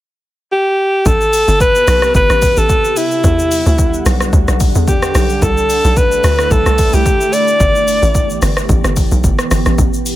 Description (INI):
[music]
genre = amapiano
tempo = 110 BPM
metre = 4/4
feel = swing 55% on 16ths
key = G major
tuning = A4 = 438 Hz
[part]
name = breathy alto saxophone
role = melody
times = 0.5-8.4 s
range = E4 to D5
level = -14 LUFS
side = equal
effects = none
[part]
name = deep dark ambient pad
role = sustained chords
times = 1.7-10.2 s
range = C3 to F#5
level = -21 LUFS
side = equal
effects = chorus, built-in reverb
[part]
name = tight log drum bass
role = bass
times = 1.1-10.2 s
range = G1 to E2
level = -15 LUFS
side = equal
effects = none
[part]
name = deep house drum kit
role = drums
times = 1.1-10.2 s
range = hi-hat, kick drum, rim click, shaker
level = -16 LUFS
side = equal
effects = none
[sound]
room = little or no reverb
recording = none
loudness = -10 LUFS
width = side -15 dB against mid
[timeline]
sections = 0.0-1.1 A section; 1.1-10.2 B section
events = drop 1.1-10.2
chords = 0.0 N.C.; 1.1 Am9; 3.0 Em9; 5.4 C69; 7.3 G6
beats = 0.51 | 1.06 1.60 2.15 2.69 | 3.24 3.79 4.33 4.88 | 5.42 5.97 6.51 7.06 | 7.60 8.15 8.69 9.24 | 9.79